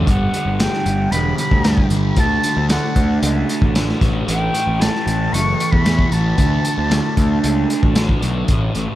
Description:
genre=psychedelic rock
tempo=114 BPM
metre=4/4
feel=straight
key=unclear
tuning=A4 = 439 Hz
part: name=fuzz guitar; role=riff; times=0.0-9.0 s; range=G2 to D4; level=-20 LUFS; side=right 1 dB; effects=distortion, phaser, dub echo
part: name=fuzz picked electric bass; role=bass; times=0.0-8.9 s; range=E1 to E2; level=-20 LUFS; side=equal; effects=overdrive
part: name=mellow silver concert flute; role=melody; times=0.1-8.0 s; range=E5 to C#6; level=-23 LUFS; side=left 1 dB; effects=dub echo
part: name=crunchy breakbeat drum kit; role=drums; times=0.1-8.9 s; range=hi-hat, kick drum, snare drum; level=-19 LUFS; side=equal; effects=none
room=light reverb, small room ambience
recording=echo-heavy mix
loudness=-15 LUFS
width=side -14 dB against mid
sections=0.0-8.5 A section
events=none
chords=0.1 G; 2.2 D; 4.0 A5; 6.4 D5

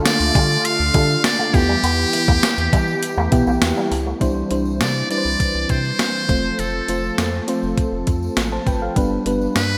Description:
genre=1980s-style pop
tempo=101 BPM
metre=4/4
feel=straight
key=C major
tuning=A4 = 440 Hz
part: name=mellow FM electric piano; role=accompaniment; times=0.0-9.8 s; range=G3 to A5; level=-25 LUFS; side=equal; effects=chorus
part: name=warm analog pad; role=sustained chords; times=0.0-9.8 s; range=D3 to B4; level=-30 LUFS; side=equal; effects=chorus
part: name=electric guitar with an envelope filter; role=riff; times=0.0-4.2 s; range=G3 to B3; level=-30 LUFS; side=equal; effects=analog chorus
part: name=trumpet with metal mute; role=melody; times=0.1-9.8 s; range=G4 to F5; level=-23 LUFS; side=equal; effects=delay
part: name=clean 12-bit digital drum machine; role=drums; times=0.1-9.7 s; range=hi-hat, kick drum, snare drum, tambourine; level=-22 LUFS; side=equal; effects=gated reverb
part: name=tambourine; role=percussion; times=0.1-9.7 s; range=none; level=-41 LUFS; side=equal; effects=none
part: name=rubbery square bass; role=bass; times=0.2-9.8 s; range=F1 to E3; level=-26 LUFS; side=equal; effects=none
room=moderate lush hall reverb, RT60 2.5 s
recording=bright 1980s-style digital production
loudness=-19 LUFS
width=mono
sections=0.0-4.2 A section; 4.2-9.8 B section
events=none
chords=0.0 Dm; 1.5 Em; 4.2 Cadd9; 6.3 F; 9.0 G

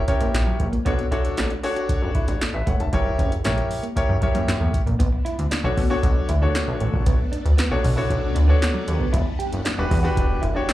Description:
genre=early-eighties boogie funk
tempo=116 BPM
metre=4/4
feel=straight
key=B minor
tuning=A4 = 440 Hz
part: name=chorused synth bass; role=bass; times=0.0-10.6 s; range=E1 to B2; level=-22 LUFS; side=equal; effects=none
part: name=clear concert grand piano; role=accompaniment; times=0.1-10.7 s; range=D4 to A5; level=-26 LUFS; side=left 2 dB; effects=plate reverb, slapback echo
part: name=mellow electric guitar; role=riff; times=0.1-10.6 s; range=F#3 to G4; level=-31 LUFS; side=right 3 dB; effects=lush chorus, slapback echo
part: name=electro analog drum machine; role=drums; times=0.1-10.7 s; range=handclaps, hi-hat, kick drum, snare drum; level=-24 LUFS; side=equal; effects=none
part: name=phased string machine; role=sustained chords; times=5.0-10.7 s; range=E3 to F#5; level=-34 LUFS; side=left 2 dB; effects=ensemble chorus, phaser, plate reverb
room=light reverb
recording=live gig heard through the venue's PA, club reverb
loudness=-19 LUFS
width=side -15 dB against mid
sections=0.0-5.0 A section; 5.0-10.7 B section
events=none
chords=0.0 F#7b9 (rootless); 0.9 Bm7; 2.9 F#7b9; 5.0 Bm7; 9.1 Em7

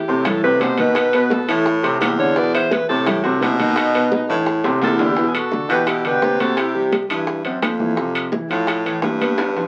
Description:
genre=Afro-Cuban jazz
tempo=171 BPM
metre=4/4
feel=straight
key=E minor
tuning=A4 = 440 Hz
part: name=clear alto saxophone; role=melody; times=0.0-6.9 s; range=D#4 to D5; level=-23 LUFS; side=equal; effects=none
part: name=warm grand piano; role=accompaniment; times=0.0-9.7 s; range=B2 to E5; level=-24 LUFS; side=equal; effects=none
part: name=clear baritone saxophone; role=bass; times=0.1-9.7 s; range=E2 to C3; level=-24 LUFS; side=equal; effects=none
part: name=congas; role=percussion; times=0.1-9.7 s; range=none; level=-29 LUFS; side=equal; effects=none
part: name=bongos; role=percussion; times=0.2-9.7 s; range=none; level=-29 LUFS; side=equal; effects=none
part: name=timbales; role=percussion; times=0.3-9.6 s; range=none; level=-28 LUFS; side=equal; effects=none
part: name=breathy jazz flute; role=second line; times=4.8-6.9 s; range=E4 to G4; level=-25 LUFS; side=equal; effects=none
room=moderate small room reverb, RT60 0.5 s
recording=very old 78 rpm record, vinyl crackle, nothing above 10.4 kHz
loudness=-18 LUFS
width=mono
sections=0.0-5.2 A section; 5.2-9.7 B section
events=alto saxophone solo 0.0-5.2; drum fill 4.3-5.2, 9.4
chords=0.3 Am; 1.0 B7; 1.7 Am; 2.4 E5; 3.1 Am; 3.8 B7; 4.5 Am; 5.2 Em9; 6.6 C; 8.0 Fmaj7

